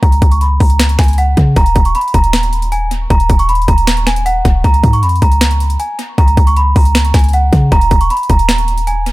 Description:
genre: hip hop, trap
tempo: 156 BPM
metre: 4/4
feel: half-time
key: Eb minor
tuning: A4 = 440 Hz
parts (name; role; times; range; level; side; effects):
- celesta; melody; 0.0-9.1 s; Gb5 to Db6; -15 LUFS; right 2 dB; low-pass filter, analog delay
- clean 808-style bass; bass; 0.0-9.1 s; Eb1 to Db3; -12 LUFS; equal; none
- trap drum kit; drums; 0.0-9.1 s; finger snaps, hi-hat, kick drum, snare drum; -13 LUFS; equal; overdrive
room: little or no reverb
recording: echo-heavy mix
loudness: -9 LUFS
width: side -19 dB against mid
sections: 0.0-9.1 A section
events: filter sweep on celesta 0.0-1.6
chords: 0.0 Dbsus4; 1.6 Eb5; 4.6 N.C.; 7.7 Eb5

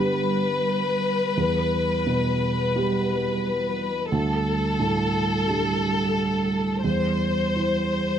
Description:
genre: neoclassical piano and strings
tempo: 87 BPM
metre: 4/4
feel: rubato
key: E minor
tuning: A4 = 440 Hz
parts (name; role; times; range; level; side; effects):
- rich chamber violin section; melody; 0.0-8.2 s; A4 to C5; -25 LUFS; left 4 dB; none
- rich cello; second line; 0.0-8.2 s; G3; -28 LUFS; right 3 dB; none
- felt-muted upright piano; accompaniment; 0.0-8.2 s; D2 to G4; -26 LUFS; right 2 dB; none
room: light reverb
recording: close, detailed microphones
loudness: -21 LUFS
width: side -9 dB against mid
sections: 0.0-8.2 A section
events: none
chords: 0.0 G; 1.4 Em; 4.1 Dsus4; 6.8 C/E

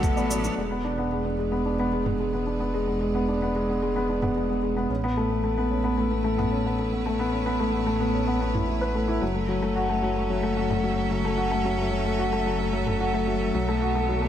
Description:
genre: piano and strings electronica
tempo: 111 BPM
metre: 4/4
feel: straight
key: unclear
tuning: A4 = 442 Hz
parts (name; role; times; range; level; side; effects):
- clear string quartet; sustained chords; 0.0-14.3 s; B2 to E5; -34 LUFS; right 2 dB; sidechain pumping
- dark upright piano; riff; 0.0-14.3 s; F#3 to B4; -24 LUFS; left 1 dB; tape echo
- dark detuned saw bass; bass; 0.0-14.3 s; E1 to B1; -30 LUFS; right 1 dB; sidechain pumping
- electronic shaker and toms; drums; 0.0-13.0 s; none; -32 LUFS; right 1 dB; low-pass filter on perc, low-pass filter on toms, low-pass filter on room
room: moderate lush hall reverb, RT60 1.8 s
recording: none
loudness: -23 LUFS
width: side -10 dB against mid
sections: 0.6-14.3 A section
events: fade-in on string quartet 0.6-14.3; filter sweep on drum 0.6-14.3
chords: 0.0 Bm7; 0.6 E7; 4.9 Aadd9; 9.2 F#m7; 13.5 Bm7

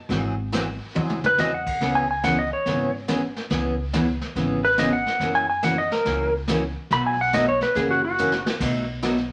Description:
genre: country, western swing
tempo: 141 BPM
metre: 4/4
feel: swing 67% on 8ths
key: B major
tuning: A4 = 438 Hz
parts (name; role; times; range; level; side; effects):
- clean lap steel guitar; second line; 0.0-8.5 s; F#4 to B5; -24 LUFS; equal; none
- picked steel-string acoustic guitar; accompaniment; 0.1-9.2 s; B2 to G#4; -28 LUFS; equal; none
- upright bass; bass; 0.1-9.3 s; F#1 to F#2; -34 LUFS; equal; none
- vintage brush drum kit; drums; 0.1-9.3 s; brushed snare drum, crash cymbal, hi-hat, kick drum, snare drum, toms; -32 LUFS; equal; none
room: wet studio reverb, RT60 0.7 s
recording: none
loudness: -23 LUFS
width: mono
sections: 0.0-8.6 A section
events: electric slide guitar solo 0.0-8.6; drum fill 1.0-1.4, 8.2-8.6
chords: 0.1 G#aug7; 1.8 C#m7; 5.2 F#7; 6.9 B7; 7.8 F#7; 8.6 B7

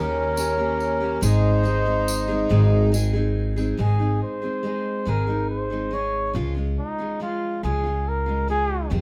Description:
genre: acoustic folk duo or small band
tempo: 47 BPM (dotted quarters)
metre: 6/8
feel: straight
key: Ab major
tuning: A4 = 438 Hz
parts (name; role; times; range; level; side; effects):
- warm flugelhorn; melody; 0.0-8.9 s; Eb4 to Db5; -29 LUFS; equal; none
- accordion; second line; 0.0-2.9 s; Db4 to Eb4; -29 LUFS; equal; none
- picked steel-string acoustic guitar; accompaniment; 0.0-9.0 s; F2 to Ab4; -30 LUFS; equal; none
- upright bass; bass; 0.0-9.0 s; Ab1 to F2; -25 LUFS; equal; none
- tambourine; percussion; 0.4-3.7 s; none; -36 LUFS; equal; none
room: moderate studio reverb, RT60 0.8 s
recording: band playing live in one room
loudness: -23 LUFS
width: mono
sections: 0.0-3.8 A section; 3.8-9.0 B section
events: flugelhorn solo 3.8-9.0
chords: 0.0 Eb7; 1.2 Ab; 6.3 Db

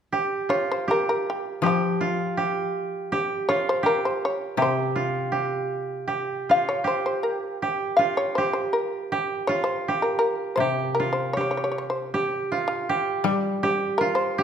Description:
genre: japanese traditional, Japanese chamber music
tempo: 80 BPM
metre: 2/4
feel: rubato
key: unclear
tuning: A4 = 441 Hz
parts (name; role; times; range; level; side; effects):
- koto; second line; 0.1-14.4 s; F4 to G4; -25 LUFS; right 4 dB; none
- shamisen; melody; 0.5-14.4 s; F4 to F5; -24 LUFS; left 2 dB; none
- koto; accompaniment; 1.6-6.8, 10.6-14.4 s; C3 to G3; -28 LUFS; left 5 dB; none
room: moderate recital hall reverb, RT60 1.6 s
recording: recorded in a church or concert hall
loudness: -22 LUFS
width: side -8 dB against mid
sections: 0.1-12.1 A section; 12.1-14.4 B section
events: none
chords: none

